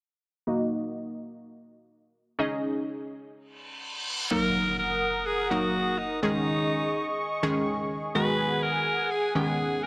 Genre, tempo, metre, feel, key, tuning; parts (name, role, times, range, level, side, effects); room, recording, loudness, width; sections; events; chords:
pop; 125 BPM; 4/4; straight; Eb minor; A4 = 440 Hz
glassy wavetable pluck; accompaniment; 0.5-9.9 s; Eb3 to Eb5; -31 LUFS; equal; chorus, low-pass filter
reverse cymbal and impact; sound effects; 3.6-6.2 s; -38 LUFS; equal
raspy alto saxophone; melody; 4.3-9.9 s; Eb4 to Cb5; -31 LUFS; equal; digital delay
warm analog pad; sustained chords; 4.3-9.9 s; Ab4 to Eb6; -33 LUFS; equal; chorus
moderate lush hall reverb, RT60 2.7 s; -28 LUFS; mono
0.5-4.3 A section; 4.3-9.9 B section
filter sweep on synth pluck 0.5-4.3; reverse cymbal 3.6-4.3; impact 4.3-6.2
0.5 Ebm; 2.4 Dbsus2; 4.3 Ebm; 6.2 Dbsus2; 8.2 Abm7